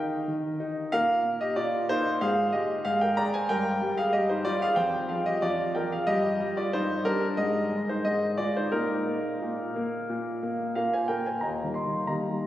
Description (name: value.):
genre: classical-period piano sonatina.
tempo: 92 BPM.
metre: 4/4.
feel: straight.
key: Eb major.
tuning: A4 = 440 Hz.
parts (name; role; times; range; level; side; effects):
warm concert grand piano; solo; 0.0-12.5 s; Eb2 to C6; -25 LUFS; equal; none.
room: wet church reverb, RT60 3.5 s.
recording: recorded on a phone in the room, club reverb, compression.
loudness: -25 LUFS.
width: side -13 dB against mid.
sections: 0.0-11.4 A section; 11.4-12.5 B section.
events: none.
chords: 0.0 Eb5; 0.9 Bb5; 2.2 Bb7(no3)/Ab; 3.5 Eb/G; 4.8 Fm; 6.1 Eb/G; 7.4 Fm7/Ab (rootless); 8.7 Bbsus4; 10.1 Bb13sus4; 11.4 Eb.